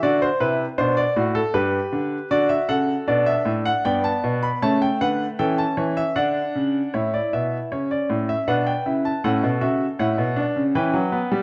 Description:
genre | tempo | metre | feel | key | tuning
classical, baroque-style 4-part fugue for grand piano | 78 BPM | 3/4 | straight | unclear | A4 = 439 Hz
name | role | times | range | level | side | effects
bright concert grand piano | solo | 0.0-11.4 s | G2 to B5 | -22 LUFS | equal | none
room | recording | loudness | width
wet stone room reverb, RT60 1.2 s | dark, warm production | -22 LUFS | mono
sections
0.0-6.9 A section; 6.9-11.4 B section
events
none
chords
0.0 D7; 1.5 G; 2.3 D; 3.8 Gadd9; 4.6 A7/C#; 6.2 D; 6.9 A; 8.5 G/B; 9.2 F#m/A; 10.7 Em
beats
| 0.03 0.79 1.55 | 2.31 3.08 3.84 | 4.61 5.38 6.16 | 6.93 7.71 8.47 | 9.24 9.99 10.75

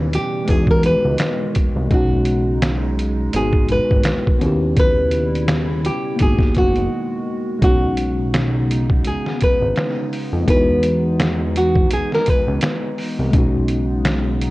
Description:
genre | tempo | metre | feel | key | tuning
lo-fi hip hop | 84 BPM | 4/4 | swing 58% on 16ths | unclear | A4 = 440 Hz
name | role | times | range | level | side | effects
nylon-string guitar | melody | 0.0-12.6 s | F#4 to B4 | -21 LUFS | equal | none
mellow tine electric piano | accompaniment | 0.0-14.5 s | G#3 to G4 | -23 LUFS | left 1 dB | medium stereo tremolo, cassette tape
warbly tape-like pad | sustained chords | 0.0-14.5 s | B2 to F#4 | -28 LUFS | right 1 dB | chorus, built-in reverb
fat analog bass | bass | 0.0-14.5 s | F#1 to E#2 | -20 LUFS | equal | none
trip hop sampler-style drum kit | drums | 0.1-14.5 s | finger snaps, hi-hat, kick drum, snare drum | -19 LUFS | equal | none
room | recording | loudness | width
digital ambience | worn, warbling old tape, cassette tape, warbly pitch drift | -15 LUFS | side -19 dB against mid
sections
0.0-7.6 A section; 7.6-14.5 B section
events
break 6.9-7.6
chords
0.5 Emaj7; 1.9 B69; 3.3 G#m7; 4.4 D#7b9b13; 6.2 G#m7; 7.6 B69; 10.5 Emaj7; 13.3 B69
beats
0.48 1.19 | 1.91 2.62 3.33 4.05 | 4.76 5.48 6.19 6.91 | 7.62 8.33 9.05 9.76 | 10.48 11.19 11.90 12.62 | 13.33 14.05

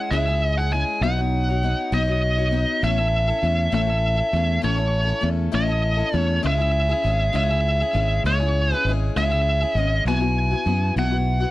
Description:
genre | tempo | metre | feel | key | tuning
folk rock and heartland rock | 66 BPM (dotted quarters) | 6/8 | straight | unclear | A4 = 445 Hz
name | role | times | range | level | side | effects
biting lead guitar | melody | 0.0-11.5 s | C#5 to G#5 | -23 LUFS | right 1 dB | overdrive
picked steel-string acoustic guitar | accompaniment | 0.0-11.5 s | A2 to C#5 | -27 LUFS | left 5 dB | none
fingered electric bass | bass | 0.1-11.4 s | G#1 to F#2 | -22 LUFS | equal | none
room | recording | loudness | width
little or no reverb | dry, close 1970s-style studio recording | -19 LUFS | side -16 dB against mid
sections
0.0-2.8 A section; 2.8-11.5 B section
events
none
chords
0.0 C#m; 1.0 Badd9; 2.8 A; 6.4 C#m; 10.1 Bsus4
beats
0.12 | 1.02 1.93 | 2.83 3.73 | 4.64 5.54 | 6.45 7.35 | 8.26 9.16 | 10.06 10.97

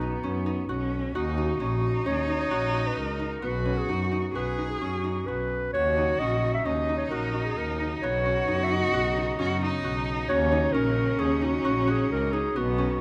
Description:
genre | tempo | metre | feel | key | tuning
contemporary instrumental, chamber music in an uneven meter | 131 BPM | 5/4 | straight | Eb minor | A4 = 440 Hz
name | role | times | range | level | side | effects
mellow clarinet | melody | 0.0-13.0 s | D#4 to Fb5 | -31 LUFS | equal | none
warm cello | second line | 0.0-13.0 s | B3 to Ab4 | -33 LUFS | equal | none
concert harp | arpeggios | 0.0-13.0 s | B3 to F#4 | -34 LUFS | equal | none
rich double bass | bass | 0.0-13.0 s | Bb1 to F#2 | -32 LUFS | equal | none
warm studio string section | sustained chords | 5.7-13.0 s | Db3 to Eb4 | -40 LUFS | equal | none
room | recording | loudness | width
moderate recital hall reverb, RT60 1.6 s | none | -27 LUFS | mono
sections
0.0-13.0 A section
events
none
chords
0.0 Badd9; 1.1 Ebm7; 3.4 Badd9; 5.7 Ebm7; 8.0 Badd9; 10.3 Ebm7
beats
0.23 0.69 | 1.15 1.60 2.06 2.52 2.97 | 3.43 3.89 4.35 4.81 5.28 | 5.74 6.20 6.66 7.12 7.57 | 8.03 8.48 8.94 9.39 9.84 | 10.29 10.75 11.20 11.65 12.10 | 12.56

